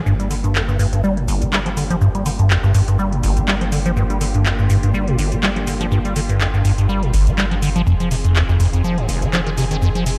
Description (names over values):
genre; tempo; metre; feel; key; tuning
acid house; 123 BPM; 4/4; swing 55% on 16ths; G phrygian; A4 = 440 Hz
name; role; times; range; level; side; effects
rich studio string section; sustained chords; 0.0-10.2 s; D3 to Ab4; -30 LUFS; equal; low-pass filter
liquid acid bass; riff; 0.1-10.1 s; F1 to G3; -19 LUFS; equal; phaser, cassette tape
round analog bass; bass; 0.1-10.2 s; F1 to G1; -26 LUFS; equal; none
booming analog drum machine; drums; 0.1-10.2 s; handclaps, hi-hat, shaker; -26 LUFS; equal; none
room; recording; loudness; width
light reverb, studio ambience; dark, warm production; -18 LUFS; mono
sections
0.1-10.2 A section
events
filter sweep on string section 0.1-10.2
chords
0.1 Gm7; 7.9 Fm7